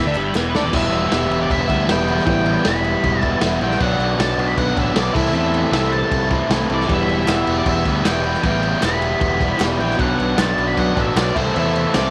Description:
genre	garage rock duo or trio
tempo	155 BPM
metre	4/4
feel	straight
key	E minor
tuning	A4 = 439 Hz
part	octave-fuzz lead guitar	melody	0.0-12.1 s	B4 to B5	-27 LUFS	equal	distortion
part	combo organ	sustained chords	0.0-12.1 s	D4 to G5	-31 LUFS	equal	none
part	crunchy overdriven guitar	riff	0.0-12.1 s	E2 to E4	-22 LUFS	equal	none
part	growling fingered electric bass	bass	0.0-12.1 s	E1 to E2	-26 LUFS	equal	overdrive
part	group handclap	percussion	0.1-0.4, 7.3-12.0 s	none	-34 LUFS	equal	none
part	crunchy breakbeat drum kit	drums	0.4-12.0 s	crash cymbal, kick drum, snare drum	-26 LUFS	equal	none
room	small room ambience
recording	none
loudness	-18 LUFS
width	mono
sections	0.7-12.1 A section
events	drum fill 0.0-0.7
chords	0.0 Em; 3.8 Bm; 5.2 Am/C; 6.9 Em; 10.0 Bm; 11.4 Am/C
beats	0.34 | 0.73 1.11 1.50 1.88 | 2.27 2.65 3.04 3.42 | 3.81 4.19 4.58 4.96 | 5.35 5.73 6.12 6.50 | 6.89 7.28 7.67 8.05 | 8.44 8.83 9.22 9.61 | 10.00 10.38 10.77 11.16 | 11.55 11.94

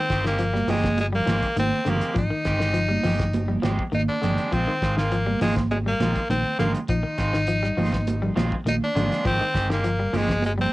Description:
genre	afrobeat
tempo	102 BPM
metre	4/4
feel	straight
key	unclear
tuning	A4 = 437 Hz
part	raspy tenor saxophone	melody	0.0-10.7 s	Ab3 to Eb4	-26 LUFS	equal	cassette tape
part	electric guitar at the edge of break-up	arpeggios	0.0-10.7 s	D3 to G3	-29 LUFS	left 3 dB	cassette tape
part	electric guitar at the edge of break-up	stabs	0.1-10.3 s	Eb3 to G4	-32 LUFS	right 2 dB	cassette tape, tape echo
part	fingered electric bass	bass	0.1-10.6 s	G1 to Bb1	-26 LUFS	equal	none
part	damped 70s drum kit	drums	0.1-10.6 s	hi-hat, kick drum, snare drum	-30 LUFS	equal	cassette tape
part	congas	percussion	0.6-10.7 s	none	-27 LUFS	right 3 dB	none
room	little or no reverb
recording	home recording on cassette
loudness	-21 LUFS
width	side -18 dB against mid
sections	0.0-10.7 A section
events	none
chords	0.0 Abmaj7; 4.5 Bb9sus4; 9.2 Abmaj7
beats	0.39 0.98 1.57 | 2.16 2.75 3.34 3.93 | 4.52 5.12 5.71 6.30 | 6.89 7.48 8.07 8.66 | 9.25 9.84 10.43

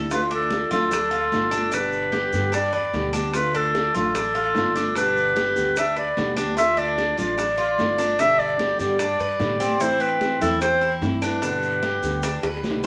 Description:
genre	latin, Cuban son and guajira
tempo	148 BPM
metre	4/4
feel	straight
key	unclear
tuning	A4 = 442 Hz
part	nylon-string guitar	accompaniment	0.0-12.9 s	B2 to G4	-31 LUFS	equal	none
part	Cuban tres	arpeggios	0.0-12.9 s	C4 to B4	-30 LUFS	equal	none
part	upright bass	bass	0.0-12.9 s	G1 to A2	-35 LUFS	equal	none
part	warm clarinet	melody	0.1-12.6 s	A4 to E5	-24 LUFS	equal	none
part	bongos	percussion	0.1-12.9 s	none	-35 LUFS	equal	none
part	congas	percussion	0.1-12.9 s	none	-36 LUFS	equal	none
part	guiro	percussion	0.1-12.8 s	none	-42 LUFS	equal	none
part	maracas	percussion	0.1-12.9 s	none	-43 LUFS	equal	none
room	wet studio reverb, RT60 0.7 s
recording	none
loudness	-22 LUFS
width	mono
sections	0.1-12.9 A section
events	drum fill 12.4-12.9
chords	0.1 Dm; 1.7 G; 3.3 Dm; 5.0 G; 6.6 Dm; 8.2 G; 9.8 Am; 11.4 G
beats	| 0.11 0.52 0.92 1.32 | 1.73 2.13 2.54 2.94 | 3.35 3.75 4.15 4.56 | 4.96 5.37 5.77 6.17 | 6.58 6.98 7.38 7.79 | 8.19 8.60 9.00 9.40 | 9.81 10.21 10.62 11.02 | 11.43 11.83 12.23 12.64

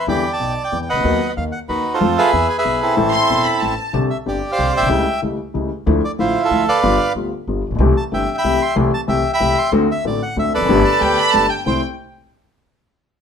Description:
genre	tango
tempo	186 BPM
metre	3/4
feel	rubato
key	A minor, C major from 3.9 s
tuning	A4 = 440 Hz
part	bandoneon	melody	0.0-11.8 s	C4 to C6	-17 LUFS	right 2 dB	none
part	warm concert grand piano	accompaniment	0.1-11.8 s	E1 to A4	-20 LUFS	left 3 dB	none
part	upright bass	bass	0.1-11.8 s	E1 to F2	-24 LUFS	right 1 dB	none
part	warm studio violin section	second line	3.1-3.9, 10.8-11.8 s	G5 to C6	-19 LUFS	right 2 dB	none
room	moderate studio reverb, RT60 0.7 s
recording	minimal, uncompressed stereo recording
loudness	-15 LUFS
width	side -7 dB against mid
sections	0.0-3.9 A section; 3.9-11.7 B section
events	none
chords	0.1 Em7; 1.0 B/D#; 2.0 F; 2.3 E; 3.0 Am; 3.9 Csus2; 4.9 A7/C#; 5.9 Dmadd9; 6.8 G7; 7.8 C6; 8.8 Am7/C; 9.7 D7; 10.7 Gadd9; 11.7 C6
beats	| 0.08 0.40 0.72 | 1.04 1.36 1.69 | 2.01 2.33 2.65 | 2.97 3.29 3.62 | 3.94 4.26 4.58 | 4.90 5.22 5.54 | 5.86 6.18 6.51 | 6.83 7.15 7.47 | 7.79 8.12 8.44 | 8.76 9.08 9.40 | 9.72 10.04 10.36 | 10.69 11.01 11.33 | 11.65

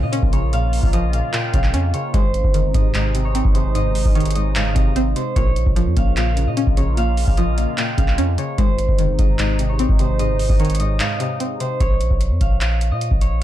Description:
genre	hip hop, trap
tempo	149 BPM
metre	4/4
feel	half-time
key	Bb dorian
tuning	A4 = 436 Hz
part	concert harp	melody	0.0-13.4 s	C5 to G5	-26 LUFS	right 1 dB	ping-pong delay
part	string-like resonator pluck	accompaniment	0.0-11.8 s	Ab2 to Db4	-24 LUFS	left 1 dB	chorus, phaser
part	sweeping resonant pad	sustained chords	0.0-11.8 s	C3 to F4	-29 LUFS	equal	chorus
part	long sustained 808-style bass	bass	0.0-13.4 s	G1 to Bb2	-20 LUFS	equal	none
part	booming analog drum machine	drums	0.1-13.3 s	handclaps, hi-hat, kick drum	-19 LUFS	equal	none
room	little or no reverb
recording	dark, warm production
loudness	-16 LUFS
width	side -13 dB against mid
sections	0.0-11.8 A section; 11.8-13.4 B section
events	break 11.0-11.8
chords	0.0 Bbm; 2.1 Ab; 5.4 Bbm; 8.6 Ab; 11.8 Bbm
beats	0.13 | 0.53 0.93 1.33 1.74 | 2.14 2.54 2.95 3.35 | 3.75 4.15 4.56 4.96 | 5.36 5.76 6.17 6.57 | 6.97 7.38 7.78 8.18 | 8.58 8.99 9.39 9.79 | 10.19 10.60 11.00 11.40 | 11.80 12.21 12.61 13.01 | 13.41

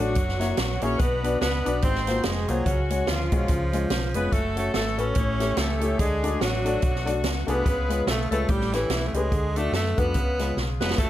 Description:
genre	uptempo gospel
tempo	144 BPM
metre	4/4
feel	swing 58% on 8ths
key	unclear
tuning	A4 = 440 Hz
part	bright tenor saxophone	melody	0.0-11.1 s	E3 to C#4	-29 LUFS	right 3 dB	none
part	clear saxophone section	melody	0.0-11.1 s	G3 to C#5	-31 LUFS	left 2 dB	none
part	warm upright piano	accompaniment	0.0-10.9 s	G#2 to D5	-29 LUFS	left 4 dB	none
part	hollow-body short-scale fingered electric bass	bass	0.0-11.1 s	E#1 to F#2	-28 LUFS	equal	none
part	swinging big-band drum kit	drums	0.2-11.1 s	hi-hat, kick drum, snare drum	-27 LUFS	right 1 dB	none
part	bright tonewheel organ	sustained chords	11.0-11.1 s	F#4 to A5	-36 LUFS	right 2 dB	fast rotary speaker, chorus vibrato
room	small room reverb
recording	none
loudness	-22 LUFS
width	side -13 dB against mid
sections	0.0-11.1 A section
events	drum fill 10.6-11.0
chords	0.2 F#7; 1.0 Bm; 1.8 G#13; 2.7 C#sus4; 3.5 C#; 4.3 F#m; 5.2 A7; 6.0 D; 7.7 C#7; 8.5 A9; 9.3 D; 10.2 C#7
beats	0.16 0.58 | 0.99 1.41 1.83 2.24 | 2.66 3.08 3.49 3.91 | 4.33 4.74 5.16 5.58 | 5.99 6.41 6.82 7.24 | 7.66 8.07 8.49 8.90 | 9.32 9.74 10.15 10.57 | 10.98

